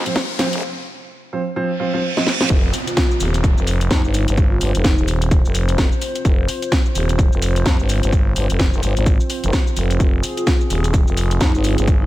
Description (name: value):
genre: bass house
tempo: 128 BPM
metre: 4/4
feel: swing 59% on 16ths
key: F minor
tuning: A4 = 444 Hz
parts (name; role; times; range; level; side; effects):
- dark analog pad; sustained chords; 0.0-12.1 s; C4 to C5; -27 LUFS; equal; wide subtle chorus, sidechain pumping
- growling FM bass; bass; 0.0-12.1 s; Eb1 to F2; -18 LUFS; equal; tube saturation, sidechain pumping, high-pass filter
- riser, reverse cymbal and downlifter; sound effects; 0.0-6.3 s; none; -27 LUFS; right 2 dB; none
- rich studio string section; texture; 0.0-0.6 s; C4 to F5; -36 LUFS; left 2 dB; none
- dark grand piano; stabs; 0.1-2.5 s; F3 to Eb5; -23 LUFS; right 2 dB; sidechain pumping, ping-pong delay
- garage drum kit; drums; 0.1-12.0 s; hi-hat, shaker, snare drum; -23 LUFS; equal; small room ambience
- electronic kick drum; drums; 0.2-12.0 s; none; -17 LUFS; equal; overdrive, high-pass filter on kick, small room ambience, high-pass filter on room
- vibraphone with soft mallets; melody; 2.9-4.9, 10.4-12.1 s; Eb4 to F4; -26 LUFS; left 1 dB; ping-pong delay
room: little or no reverb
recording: none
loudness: -15 LUFS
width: side -16 dB against mid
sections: 0.0-2.5 A section; 2.5-12.1 B section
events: build-up 0.0-2.5; drum fill 0.0-0.6, 2.1-2.5; riser 0.0-0.6; reverse cymbal 1.8-2.5; drop 2.5-12.1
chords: 0.0 F5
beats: 0.16 | 0.62 1.09 1.56 2.03 | 2.50 2.97 3.44 3.91 | 4.38 4.84 5.31 5.78 | 6.25 6.72 7.19 7.66 | 8.12 8.59 9.06 9.53 | 10.00 10.47 10.94 11.41 | 11.88